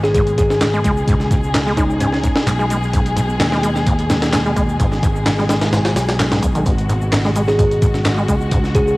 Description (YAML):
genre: breakbeat, breaks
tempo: 129 BPM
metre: 4/4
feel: straight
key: G# minor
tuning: A4 = 440 Hz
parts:
  - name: kalimba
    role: melody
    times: 0.0-2.2, 7.5-8.9 s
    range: C#4 to G#4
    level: -20 LUFS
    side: equal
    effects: AM radio sound
  - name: warm symphonic string section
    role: sustained chords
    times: 0.0-9.0 s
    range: B2 to G#4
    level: -23 LUFS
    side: left 1 dB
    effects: sidechain pumping, cassette tape
  - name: fingered electric bass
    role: bass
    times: 0.0-9.0 s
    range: G#1 to D#2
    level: -20 LUFS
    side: equal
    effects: none
  - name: breakbeat sampler-style drum kit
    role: drums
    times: 0.0-8.9 s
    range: hi-hat, kick drum, snare drum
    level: -19 LUFS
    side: equal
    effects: small room ambience, cassette tape
  - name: electronic shaker and handclaps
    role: drums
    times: 0.0-9.0 s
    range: none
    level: -29 LUFS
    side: equal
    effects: small room ambience, cassette tape
  - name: overdriven acid bass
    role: riff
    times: 0.2-8.8 s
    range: G#2 to G#3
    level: -21 LUFS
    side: equal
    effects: distortion, cassette tape, analog delay
room: light reverb, digital ambience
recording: home recording on cassette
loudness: -14 LUFS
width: side -21 dB against mid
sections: 0.0-9.0 A section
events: none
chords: 0.0 G#m7